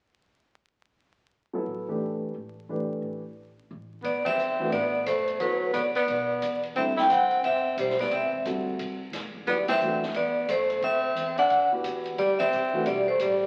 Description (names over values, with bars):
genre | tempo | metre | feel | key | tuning
modal jazz | 177 BPM | 4/4 | swing 62% on 8ths | D mixolydian | A4 = 438 Hz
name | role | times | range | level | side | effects
dark baby grand piano | accompaniment | 1.5-12.9 s | D3 to A4 | -34 LUFS | equal | none
upright bass | bass | 1.7-13.5 s | E1 to A2 | -49 LUFS | equal | none
breathy tenor saxophone | second line | 4.0-13.5 s | F#3 to E4 | -31 LUFS | equal | none
open jazz drum kit | drums | 4.0-13.3 s | hi-hat, kick drum, ride cymbal, snare drum | -42 LUFS | equal | none
vibraphone with medium hard mallets | melody | 4.1-13.5 s | B4 to G5 | -28 LUFS | equal | none
room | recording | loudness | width
wet large studio reverb, RT60 1.3 s | very old 78 rpm record, vinyl crackle | -27 LUFS | mono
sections
1.3-4.0 A section; 4.0-13.5 B section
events
band accent 4.2, 9.6, 12.3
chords
1.3 Dsus2; 4.0 D13; 6.8 C; 9.5 D13; 12.2 C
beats
| 1.32 1.66 2.00 2.34 | 2.68 3.02 3.36 3.70 | 4.04 4.38 4.72 5.06 | 5.40 5.74 6.08 6.42 | 6.75 7.09 7.43 7.77 | 8.11 8.45 8.79 9.13 | 9.47 9.81 10.15 10.49 | 10.82 11.16 11.50 11.84 | 12.18 12.52 12.86 13.20